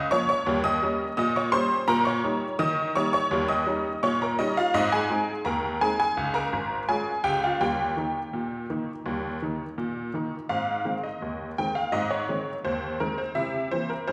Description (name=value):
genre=ragtime piano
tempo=84 BPM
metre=2/4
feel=straight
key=Ab major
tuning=A4 = 445 Hz
part: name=honky-tonk upright piano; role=solo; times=0.0-14.1 s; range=Ab1 to Eb6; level=-26 LUFS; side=equal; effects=none
room=wet recital hall reverb, RT60 1.6 s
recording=recorded in a church or concert hall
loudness=-27 LUFS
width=mono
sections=0.0-10.5 A section; 10.5-14.1 B section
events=none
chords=0.5 Eb7; 1.9 Eb7/Bb; 3.3 Eb7; 4.7 Ab; 6.2 Db; 7.6 Eb; 10.5 Ab; 13.4 C7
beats=| 0.48 1.19 | 1.90 2.61 | 3.32 4.03 | 4.75 5.46 | 6.17 6.89 | 7.61 8.34 | 9.06 9.78 | 10.50 11.22 | 11.93 12.65 | 13.36 14.07